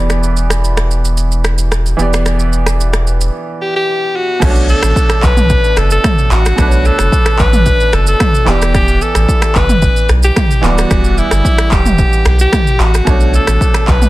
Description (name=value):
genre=afrobeats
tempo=111 BPM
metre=4/4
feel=straight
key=B minor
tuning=A4 = 439 Hz
part: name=bright concert grand piano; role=accompaniment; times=0.0-14.1 s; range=B2 to B5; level=-20 LUFS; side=right 3 dB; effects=low-pass filter
part: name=saturated sub bass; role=bass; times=0.0-14.1 s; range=D1 to B1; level=-12 LUFS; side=equal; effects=none
part: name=deep house drum kit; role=drums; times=0.1-14.1 s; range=crash cymbal, finger snaps, handclaps, kick drum, rim click, shaker, toms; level=-13 LUFS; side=equal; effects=overdrive
part: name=edgy alto saxophone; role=melody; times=3.6-14.1 s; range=E4 to B4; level=-16 LUFS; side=left 1 dB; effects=ping-pong delay
room=digital ambience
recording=dense, heavily limited modern master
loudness=-9 LUFS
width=side -17 dB against mid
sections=0.0-4.4 A section; 4.4-14.1 B section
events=break 3.3-4.4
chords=0.0 Em7; 4.4 Bm9; 8.5 Em7; 13.1 Bm9